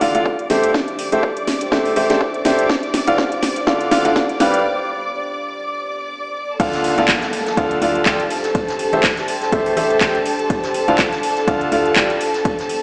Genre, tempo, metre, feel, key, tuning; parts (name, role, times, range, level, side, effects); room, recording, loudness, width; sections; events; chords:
piano house; 123 BPM; 4/4; swing 56% on 16ths; D minor; A4 = 437 Hz
warm studio string section; sustained chords; 0.0-12.8 s; A4 to D6; -26 LUFS; equal; sidechain pumping, low-pass filter
bright concert grand piano; riff; 0.0-12.1 s; D3 to G5; -21 LUFS; equal; sidechain pumping, low-pass filter, digital delay
organ-like FM bass; bass; 0.0-12.1 s; G1 to D2; -32 LUFS; equal; tube saturation, sidechain pumping, high-pass filter
house drum kit; drums; 0.0-12.8 s; crash cymbal, handclaps, hi-hat, snare drum; -24 LUFS; equal; overdrive
deep dark ambient pad; texture; 0.0-12.8 s; B3 to F5; -30 LUFS; equal; chorus, built-in reverb, sidechain pumping
electronic kick drum; drums; 0.3-12.6 s; -24 LUFS; equal; overdrive, high-pass filter on kick
jazz brush drum kit; drums; 6.6-12.8 s; hi-hat, ride cymbal, snare drum; -35 LUFS; equal
downlifter; sound effects; 6.7-10.5 s; -33 LUFS; equal
moderate lush hall reverb, RT60 2.1 s; played on a big sound system in a bare room, large studio reverb, small speaker sound; -18 LUFS; mono
0.0-6.6 A section; 6.6-12.8 B section
build-up 0.0-6.6; drum fill 0.0-4.6; break 4.6-6.6; drop 6.6-12.8
0.0 Dm; 0.5 Am7; 2.7 Dm; 4.4 G; 6.6 Dm; 8.3 Am7; 10.5 Dm; 12.2 G